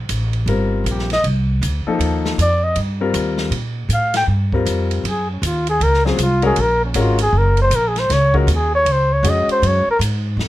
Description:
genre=modal jazz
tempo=158 BPM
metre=4/4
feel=swing 63% on 8ths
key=unclear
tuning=A4 = 441 Hz
part: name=upright bass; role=bass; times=0.0-10.5 s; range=Gb1 to Bb2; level=-18 LUFS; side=equal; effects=none
part: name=open jazz drum kit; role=drums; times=0.1-10.5 s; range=hi-hat, kick drum, ride cymbal, snare drum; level=-27 LUFS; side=right 2 dB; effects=none
part: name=warm baby grand piano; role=accompaniment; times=0.5-9.8 s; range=F3 to Bb4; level=-21 LUFS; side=left 4 dB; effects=none
part: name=trumpet with bucket mute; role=melody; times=0.9-10.0 s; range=Db4 to G5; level=-17 LUFS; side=equal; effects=none
room=little or no reverb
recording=close, detailed microphones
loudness=-15 LUFS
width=side -15 dB against mid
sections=0.0-10.5 A section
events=muted trumpet solo 0.0-10.5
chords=0.0 Ebadd9; 5.0 Gbadd9

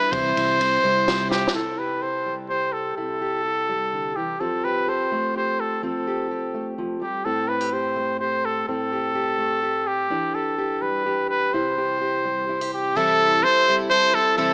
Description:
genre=indie folk with a building arrangement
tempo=126 BPM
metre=3/4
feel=straight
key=C major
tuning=A4 = 441 Hz
part: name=clear trumpet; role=melody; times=0.0-14.5 s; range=G4 to C5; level=-24 LUFS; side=equal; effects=none
part: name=felt-muted upright piano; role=accompaniment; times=0.0-1.6 s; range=C2 to C5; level=-37 LUFS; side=equal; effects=none
part: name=picked plugged-in twelve-string acoustic guitar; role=accompaniment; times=0.0-1.6, 13.0-14.5 s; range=C3 to C5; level=-28 LUFS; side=equal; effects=none
part: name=fingered electric bass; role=bass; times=0.1-1.5 s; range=C2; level=-34 LUFS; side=equal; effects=none
part: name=compact cocktail drum kit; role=drums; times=0.1-1.6 s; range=kick drum, ride cymbal, snare drum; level=-31 LUFS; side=equal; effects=none
part: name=fingerpicked plugged-in steel-string acoustic guitar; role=accompaniment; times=1.5-14.4 s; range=A2 to A4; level=-31 LUFS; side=equal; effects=none
room=moderate echo chamber reverb, RT60 2.1 s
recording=small speaker sound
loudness=-23 LUFS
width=mono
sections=0.0-1.5 A section; 1.5-13.0 B section; 13.0-14.5 A section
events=drum fill 1.3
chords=0.1 C; 1.5 C6; 4.4 Fadd9; 7.3 Am7; 10.1 Em7; 11.5 C; 13.0 C6

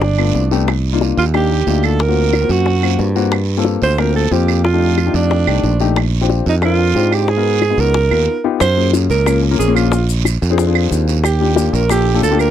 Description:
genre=Afro-Cuban jazz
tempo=182 BPM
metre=4/4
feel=straight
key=Bb major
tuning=A4 = 440 Hz
part: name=breathy alto saxophone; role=melody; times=0.0-12.5 s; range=D4 to C5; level=-17 LUFS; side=right 5 dB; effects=none
part: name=modern bright fingered electric bass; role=bass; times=0.0-12.5 s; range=G1 to Ab2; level=-15 LUFS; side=right 1 dB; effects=none
part: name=bongos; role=percussion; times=0.0-12.5 s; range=none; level=-21 LUFS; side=left 8 dB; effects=none
part: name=guiro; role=percussion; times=0.0-12.5 s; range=none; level=-29 LUFS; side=right 23 dB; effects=none
part: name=dark grand piano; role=accompaniment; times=0.2-12.5 s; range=A3 to C5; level=-19 LUFS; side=left 11 dB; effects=none
part: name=claves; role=percussion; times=0.2-12.5 s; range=none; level=-23 LUFS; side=right 26 dB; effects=none
part: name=maracas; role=percussion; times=8.6-12.5 s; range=none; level=-30 LUFS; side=left 19 dB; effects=none
room=light reverb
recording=dry, close 1970s-style studio recording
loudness=-12 LUFS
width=side -10 dB against mid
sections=0.0-8.6 A section; 8.6-12.5 B section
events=break 8.3-8.6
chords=0.0 G7; 0.7 Cm11; 2.0 D7alt; 3.3 Gm11; 4.6 F13; 6.0 Bb6; 7.3 Abm7; 8.0 Db13; 8.6 Gbmaj9; 9.9 Bb9; 11.2 Ebmaj7

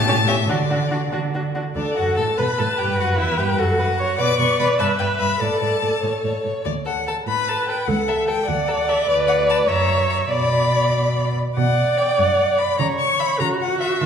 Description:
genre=quick classical-period movement for string quartet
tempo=98 BPM (dotted quarters)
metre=6/8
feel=straight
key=D major, B minor from 9.1 s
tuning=A4 = 441 Hz
part: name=rich violin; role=melody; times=0.0-14.0 s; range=D5 to D6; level=-24 LUFS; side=left 6 dB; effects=none
part: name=rich cello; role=bass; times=0.0-14.1 s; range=C#2 to D3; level=-24 LUFS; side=right 2 dB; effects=none
part: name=rich violin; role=second line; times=0.1-14.0 s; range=D4 to E5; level=-26 LUFS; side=left 3 dB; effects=none
part: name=warm viola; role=accompaniment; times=0.1-14.1 s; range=C#4 to D5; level=-21 LUFS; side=right 1 dB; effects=none
room=wet recital hall reverb, RT60 1.8 s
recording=heard from further back in the room, lossy compression artefacts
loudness=-17 LUFS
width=side -7 dB against mid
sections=0.0-1.8 A section; 1.8-11.6 A section; 11.6-14.1 B section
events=none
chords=0.5 D; 3.0 Emadd9; 3.6 F#madd11; 4.2 Bm; 4.8 Em/G; 5.4 D5/A; 6.7 D5; 7.9 A/C#; 8.5 D; 9.7 F#7; 10.3 Bm; 12.8 F#5/C#

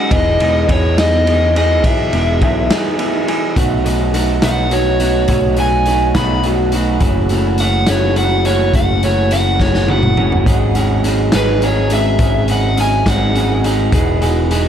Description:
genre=indie rock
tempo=70 BPM (dotted quarters)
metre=6/8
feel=straight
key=E major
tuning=A4 = 440 Hz
part: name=lead guitar through a small cranked amp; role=melody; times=0.0-13.6 s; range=B4 to B5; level=-19 LUFS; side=equal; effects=overdrive, dub echo
part: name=electric guitar through a small old amp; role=riff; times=0.0-14.7 s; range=E2 to G#4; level=-17 LUFS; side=right 1 dB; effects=dub echo
part: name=growling picked electric bass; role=bass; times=0.1-14.7 s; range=E1 to E2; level=-17 LUFS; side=equal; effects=overdrive
part: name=raw garage drum kit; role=drums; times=0.1-14.6 s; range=hi-hat, kick drum, ride cymbal, snare drum, toms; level=-19 LUFS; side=equal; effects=none
room=studio reverb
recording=echo-heavy mix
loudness=-12 LUFS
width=side -9 dB against mid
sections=0.0-3.6 A section; 3.6-14.7 B section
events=lead electric guitar solo 3.6-14.7; drum fill 9.6-10.5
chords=0.1 Emaj7; 3.6 B7; 7.0 F#m7; 10.5 G#7sus4; 13.9 Emaj7

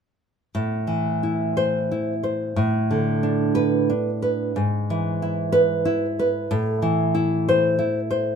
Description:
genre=romantic piece for solo classical guitar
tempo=60 BPM (dotted quarters)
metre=6/8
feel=uneven beats, rubato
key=A minor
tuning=A4 = 440 Hz
part: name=nylon-string guitar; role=solo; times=0.5-8.4 s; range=G#2 to C5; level=-20 LUFS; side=equal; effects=none
room=light reverb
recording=minimal, uncompressed stereo recording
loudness=-20 LUFS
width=side -7 dB against mid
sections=0.5-8.4 A section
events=none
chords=0.5 Am; 2.6 Asus24; 4.6 E/G#; 6.5 Am

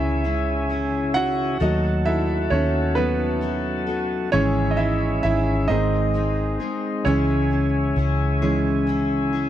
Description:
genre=six-eight pop ballad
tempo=44 BPM (dotted quarters)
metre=6/8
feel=straight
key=C# minor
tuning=A4 = 440 Hz
part: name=warm grand piano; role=accompaniment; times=0.0-9.5 s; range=D#3 to F#5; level=-23 LUFS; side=right 3 dB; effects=none
part: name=tonewheel organ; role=sustained chords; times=0.0-9.5 s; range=C#3 to A4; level=-26 LUFS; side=left 3 dB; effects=slow rotary speaker
part: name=picked steel-string acoustic guitar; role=arpeggios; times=0.0-9.5 s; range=G#2 to A4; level=-31 LUFS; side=left 6 dB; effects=none
part: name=vintage muted fingered electric bass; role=bass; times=0.0-9.5 s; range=G#1 to D#2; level=-24 LUFS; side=equal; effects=none
room=light reverb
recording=dry, close 1970s-style studio recording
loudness=-19 LUFS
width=side -11 dB against mid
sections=0.0-9.5 A section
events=grand piano solo 0.0-9.5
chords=0.0 C#m; 1.6 D#dim; 4.3 C#m/G#; 5.7 G#; 7.1 C#m

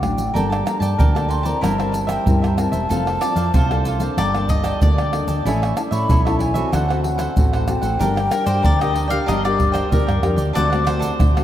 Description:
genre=samba and choro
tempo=94 BPM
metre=4/4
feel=straight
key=G minor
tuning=A4 = 440 Hz
part: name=mellow baroque flute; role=melody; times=0.0-9.9 s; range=F#5 to C6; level=-25 LUFS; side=left 1 dB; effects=none
part: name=nylon-string guitar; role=accompaniment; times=0.0-11.4 s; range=A2 to Bb4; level=-24 LUFS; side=left 3 dB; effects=none
part: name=woody fretless electric bass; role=bass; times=0.0-11.4 s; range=E1 to A2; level=-22 LUFS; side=equal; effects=none
part: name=pandeiro, tamborim, egg shaker and surdo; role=percussion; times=0.0-11.4 s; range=none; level=-21 LUFS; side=right 1 dB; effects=none
part: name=cavaquinho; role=accompaniment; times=0.3-11.4 s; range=D4 to A5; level=-27 LUFS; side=right 4 dB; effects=none
part: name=mandolin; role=second line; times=3.2-11.4 s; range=Bb4 to F5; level=-27 LUFS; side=left 3 dB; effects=none
room=wet cathedral reverb, RT60 5.4 s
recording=in a vast, echoing space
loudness=-16 LUFS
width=side -12 dB against mid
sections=0.0-10.6 A section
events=none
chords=0.3 Gmadd9; 1.6 C7/G; 2.9 F; 4.2 Gmadd9; 5.5 A; 6.7 D7; 8.0 Gm; 10.6 D7

